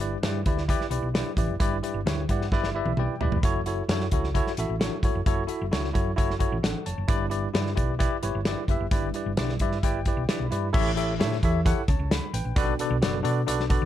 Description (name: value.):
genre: uptempo 1960s-style soul.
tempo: 131 BPM.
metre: 4/4.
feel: straight.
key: A mixolydian.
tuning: A4 = 444 Hz.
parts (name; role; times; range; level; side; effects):
barky tine electric piano; accompaniment; 0.0-13.9 s; G2 to B5; -28 LUFS; left 1 dB; fast stereo tremolo.
hollow-body short-scale fingered electric bass; bass; 0.0-13.9 s; E1 to B2; -29 LUFS; equal; none.
natural country drum kit; drums; 0.0-13.8 s; crash cymbal, hi-hat, kick drum, snare drum, toms; -26 LUFS; equal; none.
room: little or no reverb.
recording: dark, warm production.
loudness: -23 LUFS.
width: side -12 dB against mid.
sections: 0.0-10.7 A section; 10.7-13.9 B section.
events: tine electric piano fill 2.1-3.4, 9.4-10.7; drum fill 2.5-3.4.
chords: 0.0 G6; 3.4 F#m7; 7.1 Em7; 10.7 A7; 12.6 Bm7.